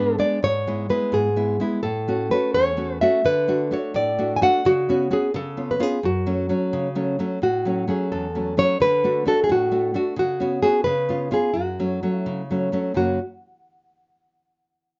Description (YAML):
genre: italian folk, Italian serenade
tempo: 86 BPM (dotted quarters)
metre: 6/8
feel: rubato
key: F# minor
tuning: A4 = 440 Hz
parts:
  - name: nylon-string guitar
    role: melody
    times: 0.0-13.2 s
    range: F#4 to G#5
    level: -24 LUFS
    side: equal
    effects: none
  - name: nylon-string guitar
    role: accompaniment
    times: 0.0-13.2 s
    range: E2 to F#4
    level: -26 LUFS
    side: equal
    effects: none
room: moderate studio reverb, RT60 0.6 s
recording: rough home demo mix, nothing above 7.5 kHz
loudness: -22 LUFS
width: mono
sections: 0.0-7.4 A section; 7.4-13.0 B section; 13.0-14.4 C section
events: none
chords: 0.4 E/G#; 1.8 A6; 3.3 D; 4.6 C#7sus4; 5.3 C#7; 6.0 F#m; 7.4 A6; 8.8 D; 10.2 C#7sus4; 10.9 C#7; 11.6 F#m; 13.0 F#